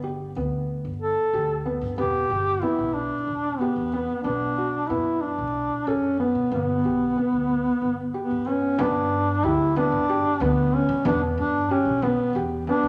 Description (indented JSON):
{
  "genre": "contemporary instrumental, chamber music in an uneven meter",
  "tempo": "185 BPM (eighths)",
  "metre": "7/8",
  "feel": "straight",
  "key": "G lydian",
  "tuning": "A4 = 439 Hz",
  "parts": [
    { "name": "felt-muted upright piano", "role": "arpeggios", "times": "0.0-12.9 s", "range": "B3 to A4", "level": "-31 LUFS", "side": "equal", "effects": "none" },
    { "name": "upright bass", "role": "bass", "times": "0.0-12.9 s", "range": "E1 to G3", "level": "-33 LUFS", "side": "equal", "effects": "none" },
    { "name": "mellow duduk", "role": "melody", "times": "1.0-12.9 s", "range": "B3 to A4", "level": "-25 LUFS", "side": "equal", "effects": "none" },
    { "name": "frame drum", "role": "percussion", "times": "8.8-12.9 s", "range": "none", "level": "-36 LUFS", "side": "equal", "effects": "none" }
  ],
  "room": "wet recital hall reverb, RT60 1.7 s",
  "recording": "none",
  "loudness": "-24 LUFS",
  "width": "mono",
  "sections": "0.0-8.8 A section; 8.8-12.9 A section",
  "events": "none",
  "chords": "0.0 G; 2.0 Em7; 4.3 Bm; 6.5 G; 11.1 Em"
}